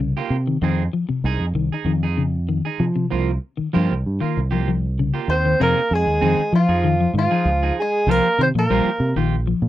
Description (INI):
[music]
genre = afrobeat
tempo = 97 BPM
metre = 4/4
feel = straight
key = F minor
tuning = A4 = 438 Hz
[part]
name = clean electric guitar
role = arpeggios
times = 0.0-9.7 s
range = C3 to G3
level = -22 LUFS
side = left 5 dB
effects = spring reverb
[part]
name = fingered electric bass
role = bass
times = 0.0-9.7 s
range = Bb1 to F3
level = -21 LUFS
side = right 1 dB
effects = none
[part]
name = electric guitar at the edge of break-up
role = stabs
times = 0.2-9.4 s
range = F3 to Ab4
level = -26 LUFS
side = right 8 dB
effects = none
[part]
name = clear alto saxophone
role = melody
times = 5.3-9.1 s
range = F4 to C5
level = -20 LUFS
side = right 1 dB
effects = none
[part]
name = bluegrass banjo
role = second line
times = 5.3-9.1 s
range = F4 to C5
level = -31 LUFS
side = left 8 dB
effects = none
[part]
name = bright trombone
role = second line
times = 5.3-9.1 s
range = F3 to C4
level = -28 LUFS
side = right 6 dB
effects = none
[sound]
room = light reverb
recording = dry, close 1970s-style studio recording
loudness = -17 LUFS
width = side -14 dB against mid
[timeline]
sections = 0.0-5.6 A section; 5.6-9.7 B section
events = none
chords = 0.0 C7sus4; 0.6 Fm7; 3.1 C7sus4; 5.6 Fm7; 8.1 C7sus4